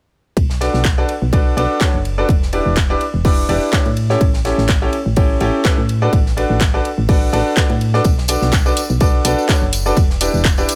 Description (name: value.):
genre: piano house.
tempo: 125 BPM.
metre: 4/4.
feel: swing 55% on 16ths.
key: B minor.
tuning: A4 = 443 Hz.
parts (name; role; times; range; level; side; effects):
solid FM bass; bass; 0.4-10.6 s; E1 to A2; -21 LUFS; equal; sidechain pumping.
deep reggae drum kit; drums; 0.4-10.8 s; hi-hat, ride cymbal, snare drum; -33 LUFS; equal; sidechain pumping on cymbals, high-pass filter on cymbals, sidechain pumping on hats, high-pass filter on hats, high-pass filter on snare, high-pass filter on room.
electronic kick drum; drums; 0.4-10.6 s; none; -18 LUFS; equal; none.
bright baby grand piano; riff; 0.6-10.7 s; C#4 to D5; -21 LUFS; equal; sidechain pumping, digital delay.
house drum kit; drums; 0.8-10.8 s; handclaps, hi-hat; -23 LUFS; equal; none.
tambourine; percussion; 8.0-10.8 s; none; -29 LUFS; equal; none.
room: little or no reverb.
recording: none.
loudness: -16 LUFS.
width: mono.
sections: 0.4-10.8 A section.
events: none.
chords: 0.4 Bm7; 2.3 Em7; 4.0 A7; 5.9 D6/A; 8.0 Bm7; 10.0 Em7.